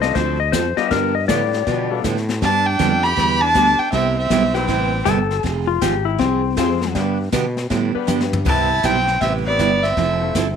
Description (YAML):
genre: country, western swing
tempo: 159 BPM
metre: 4/4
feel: swing 64% on 8ths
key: C major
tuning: A4 = 436 Hz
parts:
  - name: clean lap steel guitar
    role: second line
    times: 0.0-2.0, 5.1-6.9 s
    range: C4 to Eb5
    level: -20 LUFS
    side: left 12 dB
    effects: none
  - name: bright upright piano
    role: accompaniment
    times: 0.0-10.3 s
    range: G3 to C5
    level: -27 LUFS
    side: left 12 dB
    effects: none
  - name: sustaining fretless electric bass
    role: bass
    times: 0.0-10.6 s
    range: F1 to B2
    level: -23 LUFS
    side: equal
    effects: none
  - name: jazz brush drum kit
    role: drums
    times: 0.0-10.6 s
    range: brushed snare drum, crash cymbal, hi-hat, kick drum, snare drum, toms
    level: -25 LUFS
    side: left 4 dB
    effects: none
  - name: picked steel-string acoustic guitar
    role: accompaniment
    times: 0.1-10.5 s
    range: C3 to A4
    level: -23 LUFS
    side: right 11 dB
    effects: none
  - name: warm fiddle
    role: melody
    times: 2.4-5.1, 8.5-10.3 s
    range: D5 to B5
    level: -18 LUFS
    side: left 1 dB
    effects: none
  - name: clear fiddle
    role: second line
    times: 2.4-5.1, 8.5-10.4 s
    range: B3 to G4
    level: -25 LUFS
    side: right 10 dB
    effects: none
room: moderate plate reverb, RT60 1.0 s, small room ambience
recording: 1960s-style stereo with parts hard left and right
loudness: -16 LUFS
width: side -7 dB against mid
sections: 0.0-8.5 A section; 8.5-10.6 B section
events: drum fill 8.1-8.5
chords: 0.0 F6; 0.9 G7; 2.4 G; 3.9 Cmaj7; 5.4 Fm; 6.9 G; 8.5 Cmaj7; 10.0 Fmaj7